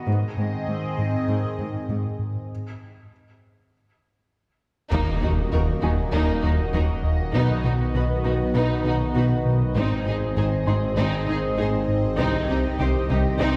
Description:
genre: cinematic, hybrid orchestral and electronic film score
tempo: 99 BPM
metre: 4/4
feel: straight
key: unclear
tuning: A4 = 441 Hz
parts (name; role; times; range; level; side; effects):
- phased analog pad; sustained chords; 0.0-13.6 s; Eb3 to Eb5; -32 LUFS; equal; phaser, chorus
- felt-muted upright piano; texture; 0.0-13.6 s; F#5 to C6; -43 LUFS; equal; none
- smooth gliding synth bass; riff; 0.1-13.6 s; C2 to B2; -28 LUFS; equal; none
- clear symphonic cello section; bass; 0.1-13.5 s; Ab2 to Eb3; -33 LUFS; equal; none
- rich studio violin section; melody; 4.9-13.6 s; Eb4 to C5; -36 LUFS; equal; none
- rich symphonic violin section; second line; 4.9-13.6 s; Bb3 to Ab4; -35 LUFS; equal; none
- clear symphonic viola section; accompaniment; 4.9-13.6 s; Eb4; -35 LUFS; equal; none
- mellow French horn section; sustained chords; 4.9-13.6 s; D#3 to C5; -34 LUFS; equal; none
- clear symphonic double bass section; bass; 4.9-13.5 s; Ab1 to Eb2; -34 LUFS; equal; none
- swelling detuned saw bass; bass; 4.9-13.6 s; Eb1 to C2; -31 LUFS; equal; none
- impact; sound effects; 4.9-7.3 s; none; -33 LUFS; equal; none
room: wet scoring stage reverb, RT60 2.1 s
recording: heard from further back in the room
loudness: -23 LUFS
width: mono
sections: 0.0-4.9 A section; 4.9-13.6 A section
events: break 2.5-4.9; impact 4.9-7.3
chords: 0.1 Ab; 2.5 N.C.; 4.9 Ebm; 7.3 B; 9.8 Ab; 12.2 Cm

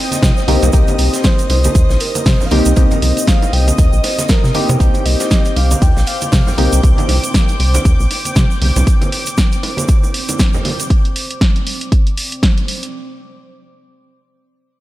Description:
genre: deep house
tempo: 118 BPM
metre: 4/4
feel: swing 57% on 16ths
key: C minor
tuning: A4 = 439 Hz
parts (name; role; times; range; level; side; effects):
- breathy flute-like synth lead; melody; 0.0-6.7 s; Bb4 to G5; -24 LUFS; equal; chorus, diffuse ambient delay
- dark analog pad; sustained chords; 0.0-12.9 s; C4 to D6; -26 LUFS; equal; chorus, sidechain pumping
- percussive organ stab; stabs; 0.0-6.8 s; Bb3 to G4; -21 LUFS; left 2 dB; chorus, phaser, sidechain pumping, diffuse ambient delay
- string machine, violins; texture; 0.0-10.9 s; Eb5 to G6; -30 LUFS; left 1 dB; ensemble chorus
- big rock drum kit; drums; 0.1-6.7 s; hi-hat, snare drum; -31 LUFS; right 2 dB; none
- punchy analog drum machine; drums; 0.1-12.9 s; hi-hat, snare drum; -20 LUFS; equal; none
- congas and bongos; percussion; 0.1-10.8 s; none; -24 LUFS; right 3 dB; sidechain pumping on perc
- egg shaker; percussion; 0.1-10.9 s; none; -25 LUFS; right 4 dB; none
- rubbery square bass; bass; 0.2-8.8 s; Bb1 to C3; -14 LUFS; equal; tube saturation, sidechain pumping
- electronic kick drum; drums; 0.2-12.5 s; none; -13 LUFS; equal; none
room: light reverb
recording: none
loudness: -11 LUFS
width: side -16 dB against mid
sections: 0.0-12.9 A section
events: drop 0.0-12.9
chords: 0.0 Cm7

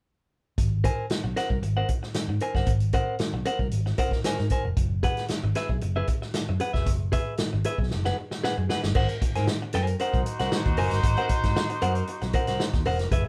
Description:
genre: funk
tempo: 115 BPM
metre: 4/4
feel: straight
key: Ab mixolydian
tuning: A4 = 440 Hz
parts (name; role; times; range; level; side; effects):
- fingered electric bass; bass; 0.6-13.2 s; Fb1 to Ab2; -30 LUFS; equal; none
- vintage drum kit; drums; 0.6-13.2 s; crash cymbal, hi-hat, kick drum, snare drum; -30 LUFS; equal; none
- clean electric guitar; accompaniment; 0.8-13.3 s; Ab4 to Ab5; -32 LUFS; equal; none
- clear horn section; second line; 10.0-12.8 s; Eb4 to C5; -33 LUFS; equal; none
room: light reverb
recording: band playing live in one room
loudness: -26 LUFS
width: mono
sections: 0.6-9.0 A section; 9.0-13.3 B section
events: drum fill 7.9-9.0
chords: 0.6 Ab9; 4.8 Gb9sus4; 9.0 Ab9

